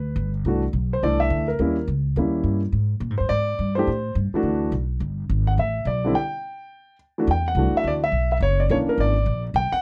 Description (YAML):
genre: jazz piano trio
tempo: 211 BPM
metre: 4/4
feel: swing 62% on 8ths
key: G major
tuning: A4 = 441 Hz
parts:
  - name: warm grand piano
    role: melody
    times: 0.0-9.8 s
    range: D3 to G5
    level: -25 LUFS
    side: equal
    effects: none
  - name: upright bass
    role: bass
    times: 0.0-9.7 s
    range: F#1 to Bb2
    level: -25 LUFS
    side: equal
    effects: none
room: little or no reverb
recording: dry, close 1970s-style studio recording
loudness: -23 LUFS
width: mono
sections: 0.0-7.3 A section; 7.3-9.8 B section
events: break 6.1-7.3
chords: 0.5 Cmaj7; 1.6 Eb7b9; 2.7 E7#9 (rootless); 3.9 Am7; 4.4 D69; 5.0 Gadd9; 7.3 E9sus4; 8.4 F#7b13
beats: 0.17 | 0.46 0.74 1.02 1.31 | 1.59 1.88 2.16 2.45 | 2.73 3.02 3.30 3.59 | 3.87 4.16 4.44 4.72 | 5.01 5.29 5.58 5.86 | 6.14 6.43 6.71 7.00 | 7.28 7.56 7.85 8.13 | 8.41 8.70 8.98 9.26 | 9.55